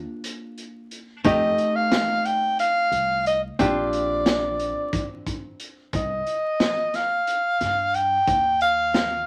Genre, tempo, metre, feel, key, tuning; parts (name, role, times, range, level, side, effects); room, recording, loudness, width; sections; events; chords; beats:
progressive instrumental, band music in an uneven meter; 179 BPM (eighths); 7/8; straight; A4 = 439 Hz
archtop guitar, miked and amplified; accompaniment; 0.0-5.9 s; A3 to G4; -29 LUFS; equal
crunchy breakbeat drum kit; drums; 0.2-9.1 s; hi-hat, kick drum, snare drum; -29 LUFS; equal
upright bass; bass; 1.2-9.3 s; Bb1 to G2; -37 LUFS; equal
breathy soprano saxophone; melody; 1.3-9.3 s; D5 to G5; -24 LUFS; equal
moderate small room reverb, RT60 0.5 s; vinyl crackle; -23 LUFS; mono
0.0-5.9 A section; 5.9-9.3 B section
0.0 Ebmaj7 (rootless); 1.2 F9; 3.6 Bb69; 5.9 Cm; 8.3 Eb
0.24 0.57 0.91 | 1.24 1.58 1.91 2.25 2.58 2.92 3.25 | 3.59 3.92 4.26 4.59 4.93 5.26 5.60 | 5.93 6.27 6.60 6.94 7.27 7.61 7.94 | 8.28 8.61 8.95